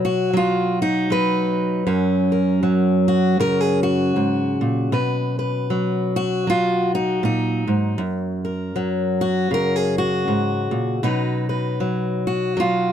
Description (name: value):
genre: folk, solo fingerstyle acoustic guitar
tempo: 78 BPM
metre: 4/4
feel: swing 58% on 8ths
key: F# major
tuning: A4 = 441 Hz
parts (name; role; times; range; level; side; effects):
- fingerpicked steel-string acoustic guitar; solo; 0.0-12.9 s; F#2 to B4; -18 LUFS; equal; none
room: little or no reverb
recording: dry, close 1970s-style studio recording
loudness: -18 LUFS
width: side -9 dB against mid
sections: 0.0-12.9 A section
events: none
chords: 0.0 B; 1.9 F#; 4.9 Badd9; 8.0 F#; 11.0 B